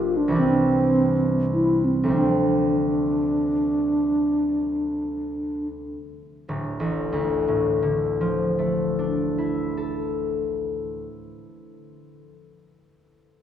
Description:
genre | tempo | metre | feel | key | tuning
classical, impressionist duo for alto flute and harp | 24-40 BPM (dotted quarters) | 6/8 | rubato | D minor | A4 = 440 Hz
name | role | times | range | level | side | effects
mellow hollow wooden-headed alto flute | melody | 0.0-5.7 s | C4 to F4 | -22 LUFS | right 1 dB | none
concert harp | accompaniment | 0.0-12.3 s | D1 to A4 | -24 LUFS | left 1 dB | none
room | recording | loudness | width
wet recital hall reverb, RT60 1.3 s | heard from further back in the room | -20 LUFS | side -9 dB against mid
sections
0.0-6.5 A section; 6.5-10.9 B section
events
slowing down 0.0-6.5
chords
0.4 Cadd9; 2.1 Dm7; 6.5 Dmadd9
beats
0.39 | 2.15 4.17 | 6.49 8.72

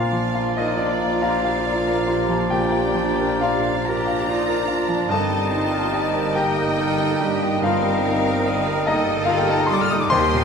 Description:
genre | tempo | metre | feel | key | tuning
classical, romantic movement for piano and orchestra | 43-49 BPM (dotted quarters) | 12/8 | rubato | unclear | A4 = 439 Hz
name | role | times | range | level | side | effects
clear grand piano | melody | 0.0-10.4 s | Eb2 to F6 | -22 LUFS | left 2 dB | none
rich studio violin section | melody | 0.0-10.4 s | Bb4 to Eb5 | -33 LUFS | left 4 dB | none
clear oboe | second line | 0.0-10.4 s | D5 to Eb5 | -30 LUFS | right 2 dB | none
hollow small flute group | second line | 0.0-10.4 s | G5 to Bb5 | -31 LUFS | left 5 dB | none
rich symphonic violin section | second line | 0.0-10.4 s | D5 to F6 | -30 LUFS | equal | none
warm clarinet | second line | 0.0-10.4 s | Eb4 to F4 | -31 LUFS | right 4 dB | none
mellow bassoon | accompaniment | 0.0-10.4 s | F3 to Bb3 | -30 LUFS | right 3 dB | none
rich symphonic viola section | accompaniment | 0.0-10.4 s | Bb3 to G4 | -29 LUFS | right 1 dB | none
mellow French horn section | sustained chords | 0.0-10.4 s | G3 to Eb4 | -31 LUFS | left 4 dB | none
warm symphonic cello section | bass | 0.0-10.4 s | D4 to Bb4 | -30 LUFS | right 3 dB | none
warm symphonic double bass section | bass | 0.0-10.4 s | G1 to Eb2 | -31 LUFS | right 5 dB | none
room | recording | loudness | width
moderate scoring stage reverb, RT60 1.5 s | minimal, uncompressed stereo recording | -18 LUFS | side -6 dB against mid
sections
0.0-10.4 A section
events
none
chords
0.0 Bb; 5.1 Eb/G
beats
1.21 2.50 3.85 | 5.09 6.35 7.62 8.86 | 10.10

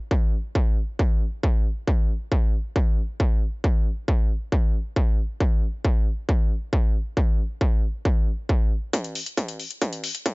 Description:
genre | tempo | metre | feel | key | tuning
trance | 136 BPM | 4/4 | straight | none | none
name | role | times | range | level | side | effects
electronic kick drum | drums | 0.1-10.3 s | none | -21 LUFS | equal | distortion, high-pass filter on kick
electronic hi-hat | drums | 8.9-10.3 s | none | -30 LUFS | left 4 dB | high-pass filter on hats
room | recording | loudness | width
little or no reverb | nothing above 7.7 kHz | -21 LUFS | side -30 dB against mid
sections
0.0-8.9 A section; 8.9-10.3 B section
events
build-up 8.9-10.3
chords
none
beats
| 0.11 0.55 0.99 1.43 | 1.88 2.32 2.76 3.20 | 3.64 4.08 4.52 4.96 | 5.41 5.85 6.29 6.73 | 7.17 7.61 8.05 8.49 | 8.93 9.38 9.82 10.26

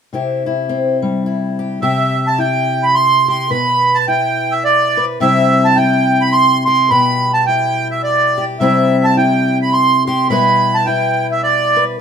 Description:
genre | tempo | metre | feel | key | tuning
acoustic folk duo or small band | 106 BPM | 3/4 | swing 58% on 8ths | C major | A4 = 440 Hz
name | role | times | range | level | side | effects
fingerpicked steel-string acoustic guitar | accompaniment | 0.1-12.0 s | B2 to B4 | -16 LUFS | left 3 dB | none
accordion | melody | 1.8-11.8 s | D5 to C6 | -13 LUFS | right 3 dB | none
room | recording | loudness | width
moderate studio reverb, RT60 0.8 s | minimal, uncompressed stereo recording | -12 LUFS | side -7 dB against mid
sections
0.1-1.8 A section; 1.8-12.0 B section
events
none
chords
0.1 C; 3.5 Bmadd11; 5.2 C; 6.9 Em/B; 8.6 C; 10.3 G6/B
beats
| 0.12 0.68 1.25 | 1.81 2.38 2.94 | 3.51 4.07 4.64 | 5.20 5.76 6.33 | 6.90 7.46 8.03 | 8.59 9.16 9.72 | 10.29 10.85 11.42 | 11.98

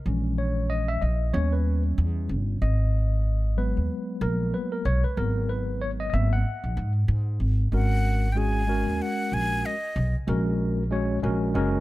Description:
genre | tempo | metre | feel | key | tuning
hip hop, jazz-hop | 94 BPM | 4/4 | swing 59% on 16ths | G# minor | A4 = 440 Hz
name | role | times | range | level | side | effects
tine electric piano | accompaniment | 0.1-11.8 s | E3 to F#5 | -29 LUFS | left 1 dB | medium stereo tremolo
upright bass | bass | 0.1-11.8 s | F#1 to G#2 | -24 LUFS | equal | none
breathy concert flute | melody | 7.7-10.2 s | D#5 to G#5 | -30 LUFS | equal | none
room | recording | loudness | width
studio ambience | none | -23 LUFS | side -17 dB against mid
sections
0.0-7.7 A section; 7.7-11.8 B section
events
tine electric piano solo 0.0-7.7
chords
0.1 A#m7b5; 1.3 D#aug7; 2.6 G#m9; 7.7 G#7sus2; 10.3 F#add9/A#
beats
| 0.06 0.70 1.34 1.98 | 2.62 3.25 3.89 4.53 | 5.17 5.81 6.45 7.08 | 7.72 8.36 9.00 9.64 | 10.28 10.91 11.55

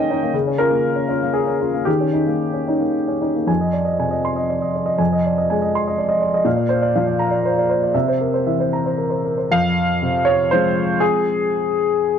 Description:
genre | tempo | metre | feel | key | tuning
neoclassical minimalist piano | 110-126 BPM | 3/4 | rubato | F dorian from 3.5 s | A4 = 441 Hz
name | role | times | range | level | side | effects
warm baby grand piano | solo | 0.0-12.2 s | F2 to C6 | -16 LUFS | equal | none
room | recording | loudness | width
light reverb | none | -16 LUFS | side -8 dB against mid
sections
0.0-3.5 A section; 3.5-9.5 B section; 9.5-12.2 C section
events
none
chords
0.3 Bbm/Db; 1.9 Eb7; 3.5 Fm7; 6.5 Bb; 7.9 C7; 9.5 Fm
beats
| 0.33 0.83 1.35 | 1.87 2.42 2.96 | 3.49 4.00 4.50 | 4.99 5.49 5.97 | 6.46 6.94 7.43 | 7.94 8.45 8.97 | 9.49 10.00 10.50 | 11.01 11.50 11.99

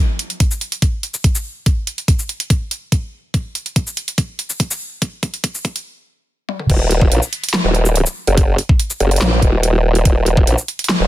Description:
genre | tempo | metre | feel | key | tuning
heavy wobble dubstep | 143 BPM | 4/4 | half-time | Eb minor | A4 = 440 Hz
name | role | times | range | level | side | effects
dubstep drum kit | drums | 0.2-11.0 s | crash cymbal, handclaps, hi-hat, shaker, snare drum, toms | -20 LUFS | right 1 dB | overdrive
electronic kick drum | drums | 0.4-10.5 s | none | -15 LUFS | equal | none
formant-sweep wobble bass | bass | 6.7-11.1 s | Eb1 to Bb1 | -14 LUFS | equal | chorus, overdrive
room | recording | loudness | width
little or no reverb | dense, heavily limited modern master, high-pass filter | -15 LUFS | side -14 dB against mid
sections
0.0-6.7 A section; 6.7-11.1 B section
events
build-up 0.0-6.7; filter sweep 0.0-6.7; drum fill 3.3-5.9, 6.5; stop 5.9-6.7; drop 6.7-11.1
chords
none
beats
0.40 0.82 1.24 | 1.66 2.08 2.50 2.92 | 3.34 3.76 4.18 4.60 | 5.02 5.44 5.86 6.28 | 6.70 7.12 7.54 7.96 | 8.38 8.79 9.21 9.63 | 10.05 10.47 10.89

